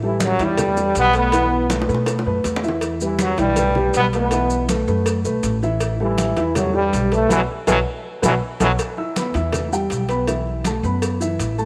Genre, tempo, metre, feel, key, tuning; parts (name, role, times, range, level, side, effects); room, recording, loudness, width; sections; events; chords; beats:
latin, salsa; 161 BPM; 4/4; straight; E minor; A4 = 441 Hz
bright trombone section; melody; 0.0-8.7 s; F#2 to E4; -23 LUFS; equal
dark upright piano; accompaniment; 0.0-11.7 s; E3 to E6; -24 LUFS; equal
upright bass; bass; 0.0-11.7 s; A1 to B2; -26 LUFS; equal
congas; percussion; 0.0-11.7 s; -30 LUFS; equal
cowbell and bongos; percussion; 0.2-11.6 s; -32 LUFS; equal
maracas; percussion; 0.2-11.7 s; -36 LUFS; equal
moderate plate reverb, RT60 3.2 s; -20 LUFS; mono
0.0-8.8 A section; 8.8-11.7 B section
drum fill 1.7-2.8, 7.7-8.8; band accent 7.3-8.8
0.0 A5; 1.3 B7sus4; 2.8 Emadd9; 4.3 B7sus4; 5.8 A5; 7.3 B7sus4; 8.8 Em; 10.3 B7sus4
0.21 0.58 0.96 | 1.33 1.70 2.08 2.45 | 2.82 3.20 3.57 3.94 | 4.32 4.69 5.06 5.43 | 5.81 6.18 6.55 6.92 | 7.30 7.67 8.04 8.41 | 8.79 9.16 9.53 9.90 | 10.28 10.65 11.02 11.39